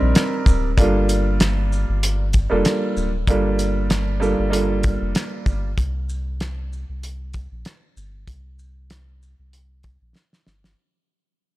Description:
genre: hip hop, boom-bap hip-hop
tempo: 96 BPM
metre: 4/4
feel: swing 56% on 16ths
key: unclear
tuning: A4 = 440 Hz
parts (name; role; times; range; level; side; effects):
- dark upright piano; accompaniment; 0.0-5.7 s; G3 to Bb4; -22 LUFS; right 2 dB; high-pass filter, low-pass filter
- soft dub sub bass; bass; 0.0-10.7 s; D1 to C2; -23 LUFS; equal; none
- cloth-damped thuddy drum kit; drums; 0.2-10.8 s; hi-hat, kick drum, rim click, shaker, snare drum; -20 LUFS; equal; none
room: light reverb, studio reverb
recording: none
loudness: -18 LUFS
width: side -17 dB against mid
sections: 0.0-10.8 A section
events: fade-out 0.0-10.8; break 5.8-10.8; drum fill 10.2-10.8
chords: 0.0 Cm9; 0.8 Gm7; 5.8 C5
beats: 0.15 | 0.78 1.40 2.02 2.65 | 3.27 3.90 4.53 5.15 | 5.78 6.40 7.03 7.65 | 8.28 8.90 9.53 10.15

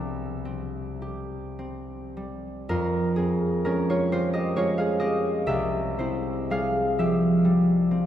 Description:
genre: classical, solo harp piece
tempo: 34-45 BPM (dotted quarters)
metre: 6/8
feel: rubato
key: F minor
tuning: A4 = 442 Hz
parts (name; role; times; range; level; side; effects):
- concert harp; solo; 0.0-8.1 s; C2 to F5; -23 LUFS; equal; none
room: wet cathedral reverb, RT60 6.3 s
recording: heard from further back in the room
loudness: -22 LUFS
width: side -11 dB against mid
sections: 0.0-2.7 A section; 2.7-8.1 B section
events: none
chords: 0.0 C; 2.7 Fm; 5.5 C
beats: 1.00 | 2.65 4.08 | 5.46 7.00

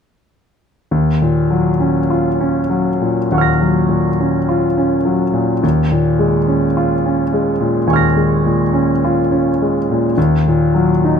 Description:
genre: classical, impressionist solo piano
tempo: 50-55 BPM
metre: 4/4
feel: rubato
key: Eb minor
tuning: A4 = 436 Hz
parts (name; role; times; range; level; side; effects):
- clear grand piano; solo; 0.9-11.2 s; Eb2 to Bb6; -13 LUFS; equal; none
room: moderate recital hall reverb, RT60 1.6 s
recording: close, detailed microphones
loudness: -13 LUFS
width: side -7 dB against mid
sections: 0.9-11.2 A section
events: none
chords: 0.9 Ebm9; 5.6 Bbm7/Eb; 10.2 Ebm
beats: | 0.92 2.11 3.31 4.49 | 5.63 6.79 7.90 9.02 | 10.17

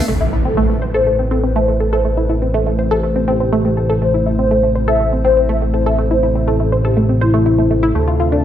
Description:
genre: techno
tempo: 122 BPM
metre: 4/4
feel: straight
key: A minor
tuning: A4 = 438 Hz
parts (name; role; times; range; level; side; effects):
- dark analog pad; sustained chords; 0.0-8.4 s; A3 to F5; -24 LUFS; left 2 dB; chorus
- expressive synth lead; melody; 0.1-8.4 s; E4 to E5; -19 LUFS; left 2 dB; wide subtle chorus, cassette tape, dub echo
- analog pluck; arpeggios; 0.1-8.4 s; A3 to C5; -19 LUFS; equal; chorus, phaser, dub echo
- fat analog bass; bass; 0.1-8.4 s; A1 to D2; -18 LUFS; equal; none
- analog drone; drone; 2.1-8.4 s; A2 to C3; -24 LUFS; equal; none
- impact; sound effects; 0.1-2.0 s; none; -22 LUFS; equal; none
room: moderate digital room reverb, RT60 1.1 s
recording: none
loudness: -13 LUFS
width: side -10 dB against mid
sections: 0.1-8.4 A section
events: impact 0.1-2.0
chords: 0.1 Am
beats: | 0.08 0.57 1.06 1.56 | 2.05 2.54 3.03 3.52 | 4.01 4.51 5.00 5.49 | 5.98 6.47 6.97 7.46 | 7.95 8.44

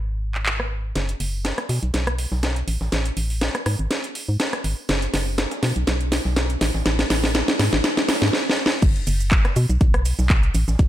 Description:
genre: piano house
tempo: 122 BPM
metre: 4/4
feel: swing 54% on 16ths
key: unclear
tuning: A4 = 441 Hz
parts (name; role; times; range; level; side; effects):
- organ-like FM bass; bass; 0.0-10.9 s; F#1 to B2; -22 LUFS; equal; sidechain pumping
- house drum kit; drums; 0.3-10.9 s; crash cymbal, handclaps, hi-hat, rim click, shaker, snare drum; -22 LUFS; equal; none
- breakbeat sampler-style drum kit; drums; 1.0-10.9 s; hi-hat, snare drum; -36 LUFS; right 1 dB; high-pass filter on hats, high-pass filter on snare, high-pass filter on room
- electronic kick drum; drums; 8.8-10.9 s; none; -17 LUFS; equal; none
room: light reverb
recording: none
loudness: -19 LUFS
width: side -13 dB against mid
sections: 1.0-8.8 A section; 8.8-10.9 B section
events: build-up 1.0-8.8; drum fill 1.0-8.3, 8.3-8.8; drop 8.8-10.9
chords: none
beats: 0.46 | 0.96 1.45 1.94 2.43 | 2.92 3.42 3.91 4.40 | 4.89 5.38 5.87 6.37 | 6.86 7.35 7.84 8.33 | 8.82 9.32 9.81 10.30 | 10.79

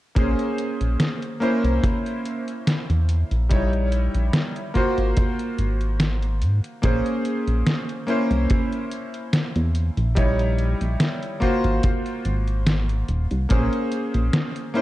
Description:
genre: vaporwave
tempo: 72 BPM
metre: 4/4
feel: swing 54% on 16ths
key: Bb minor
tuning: A4 = 441 Hz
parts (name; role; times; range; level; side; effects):
- bright electric grand piano; accompaniment; 0.2-14.8 s; G3 to Db5; -25 LUFS; equal; lush chorus, analog delay
- chorused synth bass; bass; 0.2-14.3 s; Eb1 to Ab2; -21 LUFS; equal; none
- detuned 8-bit digital drum machine; drums; 0.2-14.8 s; hi-hat, snare drum; -24 LUFS; equal; none
- kick drum; drums; 0.2-13.7 s; none; -22 LUFS; equal; none
room: light reverb, small room ambience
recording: dark, warm production, cassette tape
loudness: -20 LUFS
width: side -16 dB against mid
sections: 0.2-14.8 A section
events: none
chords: 0.2 Bbm9; 1.4 C7b9; 3.5 Eb7b9/Bb; 4.8 Ab13; 6.8 Bbm9; 8.1 C7b9; 10.2 Eb7b9/Bb; 11.4 Ab13; 13.5 Bbm9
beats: | 0.17 1.00 1.84 2.67 | 3.50 4.34 5.17 6.00 | 6.84 7.67 8.50 9.34 | 10.17 11.00 11.84 12.67 | 13.50 14.34

